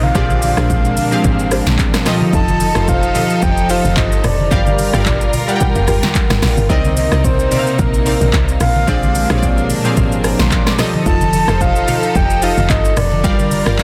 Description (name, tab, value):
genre	amapiano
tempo	110 BPM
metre	4/4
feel	swing 55% on 16ths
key	unclear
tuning	A4 = 443 Hz
part	breathy flute-like synth lead	melody	0.0-13.8 s	Bb4 to A5	-22 LUFS	equal	chorus, digital delay
part	glassy digital keys	accompaniment	0.0-13.8 s	Bb2 to D6	-22 LUFS	equal	chorus
part	warm studio string section	sustained chords	0.0-13.8 s	C3 to Bb4	-25 LUFS	equal	sidechain pumping
part	deep log drum bass	bass	0.0-13.8 s	F1 to C2	-20 LUFS	equal	none
part	congas	percussion	0.0-13.8 s	none	-25 LUFS	equal	none
part	downlifter	sound effects	0.0-2.3 s	none	-38 LUFS	equal	none
part	deep mellow chord stab	stabs	0.1-13.8 s	D4 to C5	-29 LUFS	equal	chorus, phaser, digital delay
part	deep house drum kit	drums	0.2-13.8 s	handclaps, hi-hat, kick drum, rim click, shaker, snare drum, toms	-20 LUFS	equal	none
room	light reverb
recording	dense, heavily limited modern master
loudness	-14 LUFS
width	mono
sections	0.0-13.8 A section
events	none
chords	0.2 Bb13; 2.1 F7; 4.5 Gm7; 6.7 Cm7; 8.9 Bb13; 10.8 F7; 13.2 Gm7